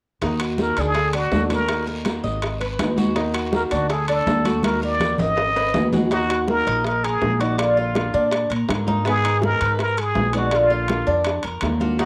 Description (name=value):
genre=latin, Cuban son and guajira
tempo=163 BPM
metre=4/4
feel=straight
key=Eb harmonic minor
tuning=A4 = 441 Hz
part: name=flamenco guitar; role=accompaniment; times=0.2-12.1 s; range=D3 to Ab4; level=-32 LUFS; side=equal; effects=none
part: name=Cuban tres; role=arpeggios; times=0.2-12.1 s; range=Cb4 to Eb5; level=-27 LUFS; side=equal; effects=none
part: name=upright bass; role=bass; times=0.2-12.1 s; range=Ab1 to Bb2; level=-27 LUFS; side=equal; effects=none
part: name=bongos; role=percussion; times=0.2-12.1 s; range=none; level=-30 LUFS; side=equal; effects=none
part: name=congas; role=percussion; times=0.2-12.1 s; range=none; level=-30 LUFS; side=equal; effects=none
part: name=guiro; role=percussion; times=0.2-6.1 s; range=none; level=-43 LUFS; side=equal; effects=none
part: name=timbales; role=percussion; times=0.2-12.1 s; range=none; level=-33 LUFS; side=equal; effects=none
part: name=trumpet with plunger mute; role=melody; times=0.6-12.1 s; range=F4 to Eb5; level=-25 LUFS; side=equal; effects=cassette tape
room=moderate small room reverb, RT60 0.6 s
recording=home recording on cassette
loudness=-21 LUFS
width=mono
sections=0.2-6.1 A section; 6.1-12.1 B section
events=drum fill 4.6-6.1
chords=0.2 Ebm; 1.0 D; 1.7 Ebm; 2.4 Abm; 3.2 Ebm; 3.9 D; 4.6 Ebm; 5.4 Abm; 6.1 Ebm; 7.6 Bb; 9.1 Abm; 10.5 Bb